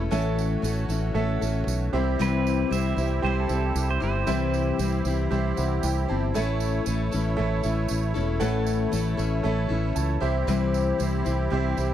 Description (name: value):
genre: folk rock and heartland rock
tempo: 116 BPM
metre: 4/4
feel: straight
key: unclear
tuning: A4 = 440 Hz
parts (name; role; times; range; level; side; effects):
- picked steel-string acoustic guitar; accompaniment; 0.0-11.9 s; A2 to C5; -28 LUFS; left 7 dB; none
- musette accordion; sustained chords; 0.0-11.9 s; A3 to C#5; -34 LUFS; right 3 dB; none
- fingered electric bass; bass; 0.0-11.9 s; E1 to C#2; -26 LUFS; right 1 dB; none
- bright concert grand piano; accompaniment; 0.1-11.9 s; C4 to A5; -32 LUFS; right 8 dB; none
- tambourine; percussion; 0.1-11.9 s; none; -41 LUFS; right 14 dB; none
- pedal steel guitar; second line; 2.2-5.0 s; A4 to E5; -32 LUFS; right 8 dB; none
room: studio reverb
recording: dry, close 1970s-style studio recording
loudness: -23 LUFS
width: side -11 dB against mid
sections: 0.0-11.9 A section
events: grand piano fill 5.3-6.3, 9.7-10.5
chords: 0.0 A; 1.9 C; 6.3 A; 10.2 C